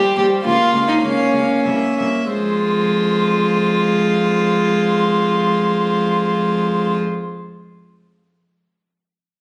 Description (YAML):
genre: quick classical-period movement for string quartet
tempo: 87-109 BPM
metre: 3/4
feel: rubato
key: F minor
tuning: A4 = 440 Hz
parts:
  - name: warm violin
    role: melody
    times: 0.0-7.0 s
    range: C5 to F5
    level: -30 LUFS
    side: equal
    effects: none
  - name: rich violin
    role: second line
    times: 0.0-7.0 s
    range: Db4 to G4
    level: -21 LUFS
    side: equal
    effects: none
  - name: warm viola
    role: accompaniment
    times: 0.0-7.0 s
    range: G3 to Bb3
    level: -21 LUFS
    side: equal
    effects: none
  - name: rich cello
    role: bass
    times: 0.2-7.0 s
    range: C2 to F2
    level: -26 LUFS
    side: equal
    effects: none
room: moderate recital hall reverb, RT60 1.5 s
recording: recorded on a phone in the room, studio reverb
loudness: -17 LUFS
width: mono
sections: 0.0-2.3 A section; 2.3-6.3 B section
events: slowing down 0.0-2.3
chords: 0.5 Bbm/Db; 1.7 C7 (rootless); 2.3 Fm